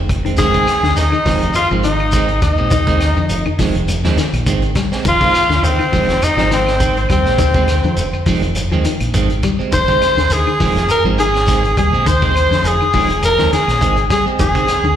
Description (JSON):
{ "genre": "afrobeat", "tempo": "103 BPM", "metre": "4/4", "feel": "swing 54% on 16ths", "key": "F dorian", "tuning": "A4 = 437 Hz", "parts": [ { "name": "fingered electric bass", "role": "bass", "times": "0.0-15.0 s", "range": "F1 to F2", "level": "-18 LUFS", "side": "equal", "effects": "none" }, { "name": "electric guitar at the edge of break-up", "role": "stabs", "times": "0.1-14.9 s", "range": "Eb3 to C4", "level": "-22 LUFS", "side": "right 7 dB", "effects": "spring reverb, slapback echo" }, { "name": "crunchy breakbeat drum kit", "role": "drums", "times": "0.1-14.8 s", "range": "hi-hat, kick drum, snare drum", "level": "-21 LUFS", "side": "equal", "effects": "none" }, { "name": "claves", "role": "percussion", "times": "0.1-14.8 s", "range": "none", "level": "-35 LUFS", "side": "left 1 dB", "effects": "none" }, { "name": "shekere", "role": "percussion", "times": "0.1-15.0 s", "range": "none", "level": "-26 LUFS", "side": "left 1 dB", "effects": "none" }, { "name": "clean electric guitar", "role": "arpeggios", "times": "0.2-15.0 s", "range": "D3 to G3", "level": "-24 LUFS", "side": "left 7 dB", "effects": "slapback echo" }, { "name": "raspy tenor saxophone", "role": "melody", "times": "0.4-15.0 s", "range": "C4 to C5", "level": "-16 LUFS", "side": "left 2 dB", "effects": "slapback echo" }, { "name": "dark erhu", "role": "second line", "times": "0.4-15.0 s", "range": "C5 to C6", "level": "-26 LUFS", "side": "right 3 dB", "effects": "slapback echo" }, { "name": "warm trumpet", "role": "second line", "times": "0.4-15.0 s", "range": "C4 to C5", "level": "-24 LUFS", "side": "right 6 dB", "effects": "slapback echo" } ], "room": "light reverb", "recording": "live gig heard through the venue's PA, recital hall reverb", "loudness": "-12 LUFS", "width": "side -10 dB against mid", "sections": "0.4-15.0 A section", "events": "none", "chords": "0.4 Fm7", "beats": "| 0.38 0.97 1.55 2.13 | 2.72 3.30 3.89 4.47 | 5.05 5.64 6.22 6.81 | 7.39 7.98 8.56 9.14 | 9.73 10.31 10.89 11.48 | 12.06 12.64 13.23 13.81 | 14.39" }